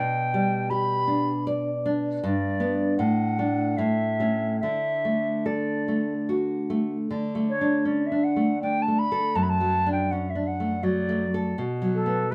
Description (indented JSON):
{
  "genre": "romantic duo for flute and classical guitar",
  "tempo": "70-82 BPM",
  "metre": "3/4",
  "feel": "rubato",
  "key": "D major",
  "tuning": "A4 = 439 Hz",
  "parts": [
    { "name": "silver concert flute", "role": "melody", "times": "0.0-12.3 s", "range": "A4 to B5", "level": "-30 LUFS", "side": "equal", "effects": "none" },
    { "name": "nylon-string guitar", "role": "accompaniment", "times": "0.0-12.3 s", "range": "F#2 to D5", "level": "-27 LUFS", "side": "equal", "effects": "none" }
  ],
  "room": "light reverb",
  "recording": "none",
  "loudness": "-25 LUFS",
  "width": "mono",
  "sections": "0.0-7.1 A section; 7.1-12.3 B section",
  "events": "none",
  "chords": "0.0 G/B; 2.2 G; 3.0 D/A; 3.8 A; 4.6 D; 7.1 D5; 9.4 D/F#; 11.6 B5"
}